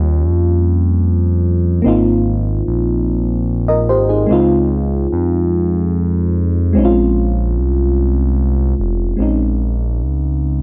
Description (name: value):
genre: slow six-eight R&B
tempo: 49 BPM (dotted quarters)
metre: 6/8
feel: straight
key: Bb dorian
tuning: A4 = 437 Hz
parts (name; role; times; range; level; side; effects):
- mellow FM electric piano; accompaniment; 0.0-10.6 s; G3 to Eb5; -19 LUFS; equal; chorus
- smooth gliding synth bass; bass; 0.0-10.6 s; F1 to F2; -18 LUFS; equal; none
room: light reverb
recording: none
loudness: -15 LUFS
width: mono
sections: 0.0-9.2 A section; 9.2-10.6 B section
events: none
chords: 0.0 Eb9; 1.8 Ab69; 4.3 Dbmaj9; 6.7 Bbm9; 9.2 Bbm11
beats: 0.61 | 1.83 3.06 | 4.28 5.51 | 6.73 7.96 | 9.18 10.40